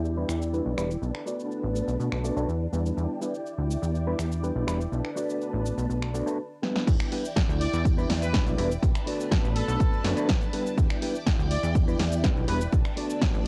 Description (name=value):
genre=filtered disco house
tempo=123 BPM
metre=4/4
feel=straight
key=E minor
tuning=A4 = 441 Hz
part: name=string machine, full ensemble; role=sustained chords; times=0.0-13.5 s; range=D4 to A5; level=-37 LUFS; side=equal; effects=phaser, ensemble chorus, sidechain pumping, low-pass filter, cassette tape
part: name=plucky analog bass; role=bass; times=0.0-13.5 s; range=E1 to B2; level=-31 LUFS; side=equal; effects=sidechain pumping, low-pass filter
part: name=punchy analog drum machine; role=drums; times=0.1-13.4 s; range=cabasa, crash cymbal, finger snaps, hi-hat, snare drum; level=-35 LUFS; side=equal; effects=cassette tape
part: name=overdriven reed electric piano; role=accompaniment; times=0.2-13.5 s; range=G3 to D5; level=-33 LUFS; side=equal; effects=fast tremolo, phaser, sidechain pumping, low-pass filter, cassette tape
part: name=electronic kick drum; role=drums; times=6.9-13.3 s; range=none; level=-27 LUFS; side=equal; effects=cassette tape
part: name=clear trumpet section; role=melody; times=7.6-12.7 s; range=A4 to D5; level=-36 LUFS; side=equal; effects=sidechain pumping, low-pass filter, cassette tape
room=little or no reverb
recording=home recording on cassette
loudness=-27 LUFS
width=mono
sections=0.0-6.9 A section; 6.9-13.5 B section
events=filter sweep on drum 0.0-6.9; filter sweep 0.0-6.9; drum fill 6.6; drop 6.9-13.5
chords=0.0 Em7; 1.0 Bm7; 3.0 Em7; 4.9 Bm7; 6.9 Em7; 8.8 Bm7; 10.8 Em7; 12.7 Bm7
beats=0.04 0.53 | 1.02 1.51 2.00 2.48 | 2.97 3.46 3.95 4.43 | 4.92 5.41 5.90 6.39 | 6.87 7.36 7.85 8.34 | 8.83 9.31 9.80 10.29 | 10.78 11.27 11.75 12.24 | 12.73 13.22